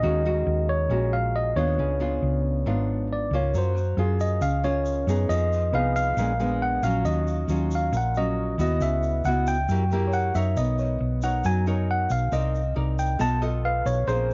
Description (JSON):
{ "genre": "bossa nova", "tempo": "137 BPM", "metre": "4/4", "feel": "straight", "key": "unclear", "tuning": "A4 = 441 Hz", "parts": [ { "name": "tine electric piano", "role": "melody", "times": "0.0-14.3 s", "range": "C5 to A5", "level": "-29 LUFS", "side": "equal", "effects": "cassette tape" }, { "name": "nylon-string guitar", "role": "accompaniment", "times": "0.0-14.3 s", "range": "Ab2 to D#5", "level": "-31 LUFS", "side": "equal", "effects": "cassette tape" }, { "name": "hollow-body short-scale fingered electric bass", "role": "bass", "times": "0.0-14.3 s", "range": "Ab1 to Gb2", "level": "-28 LUFS", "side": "equal", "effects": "none" }, { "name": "egg shaker", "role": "percussion", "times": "3.5-14.3 s", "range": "none", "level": "-51 LUFS", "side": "equal", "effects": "none" }, { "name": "clear concert grand piano", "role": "accompaniment", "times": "4.0-6.4, 9.9-14.3 s", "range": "Ab4 to Db5", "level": "-40 LUFS", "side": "equal", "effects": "cassette tape" } ], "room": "light reverb", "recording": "home recording on cassette, nothing above 7.5 kHz", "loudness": "-24 LUFS", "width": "mono", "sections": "0.0-14.3 A section", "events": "none", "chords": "0.0 Ebm11; 1.8 Db7b9; 3.5 Gbmaj7; 5.3 Fm7b5; 6.2 Bb7b9; 7.1 Ebm9; 8.8 Dbm7; 9.7 Gb7b9; 10.6 Bmaj9; 12.3 Cm9; 13.2 B7#11", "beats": "| 0.04 0.48 0.92 1.35 | 1.79 2.23 2.67 3.11 | 3.55 3.99 4.42 4.86 | 5.30 5.74 6.18 6.62 | 7.06 7.50 7.93 8.37 | 8.81 9.25 9.69 10.13 | 10.57 11.01 11.44 11.88 | 12.32 12.76 13.20 13.64 | 14.07" }